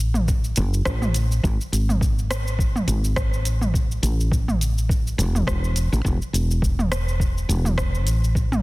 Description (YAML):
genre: sunset chillout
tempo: 104 BPM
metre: 4/4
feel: swing 56% on 16ths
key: unclear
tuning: A4 = 440 Hz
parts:
  - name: woody fretless electric bass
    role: bass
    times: 0.0-8.6 s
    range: E1 to A1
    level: -21 LUFS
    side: equal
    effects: none
  - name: deep house drum kit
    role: drums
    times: 0.1-8.6 s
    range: hi-hat, rim click, shaker, toms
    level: -27 LUFS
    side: right 1 dB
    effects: overdrive, studio reverb
  - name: electronic kick drum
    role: drums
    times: 0.3-8.5 s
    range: none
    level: -24 LUFS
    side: equal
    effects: studio reverb
room: little or no reverb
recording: dense, heavily limited modern master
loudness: -19 LUFS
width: side -21 dB against mid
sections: 0.0-8.6 A section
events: none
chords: none